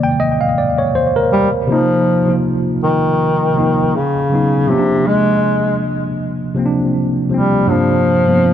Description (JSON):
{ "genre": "R&B", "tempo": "80 BPM", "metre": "4/4", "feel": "swing 55% on 16ths", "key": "C minor", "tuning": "A4 = 442 Hz", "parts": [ { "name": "mellow tine electric piano", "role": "accompaniment", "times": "0.0-8.5 s", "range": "G2 to G5", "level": "-15 LUFS", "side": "equal", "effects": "medium stereo tremolo, tape echo" }, { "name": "warm duduk", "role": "melody", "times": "1.3-8.5 s", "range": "C3 to Ab3", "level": "-15 LUFS", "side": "left 1 dB", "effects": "tape echo" } ], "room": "light reverb", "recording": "echo-heavy mix", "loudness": "-13 LUFS", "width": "side -10 dB against mid", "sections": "0.0-1.7 A section; 1.7-8.5 B section", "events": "tine electric piano solo 0.0-1.7", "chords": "0.0 Cm7; 3.9 Db9sus4; 4.7 Ab; 7.7 Gm7", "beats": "0.19 0.94 | 1.69 2.44 3.19 3.94 | 4.69 5.44 6.19 6.94 | 7.69 8.44" }